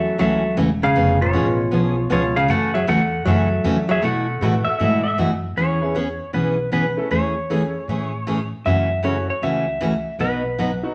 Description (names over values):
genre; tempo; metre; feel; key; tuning
country; 156 BPM; 4/4; swing 64% on 8ths; E major; A4 = 439 Hz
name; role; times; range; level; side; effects
clean lap steel guitar; melody; 0.0-10.8 s; E#4 to F#5; -25 LUFS; equal; none
hollow-body jazz guitar; second line; 0.0-5.1 s; B2 to A3; -26 LUFS; equal; none
bright upright piano; accompaniment; 0.0-1.6, 4.4-10.9 s; F#3 to A4; -30 LUFS; equal; none
upright bass; bass; 0.0-10.8 s; E1 to B2; -27 LUFS; equal; none
picked steel-string acoustic guitar; accompaniment; 0.2-10.7 s; B2 to G#4; -25 LUFS; equal; none
pedal steel guitar; second line; 4.6-5.2 s; E5; -24 LUFS; equal; none
room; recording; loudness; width
wet large studio reverb, RT60 0.9 s; nothing above 10.7 kHz; -20 LUFS; mono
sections
0.0-5.6 A section; 5.6-10.9 B section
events
none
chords
0.0 F#m7; 1.0 C#7/E#; 2.5 F#m7; 4.0 B7sus4; 5.6 E6; 7.1 Amaj7/E; 8.7 F#m7; 10.2 B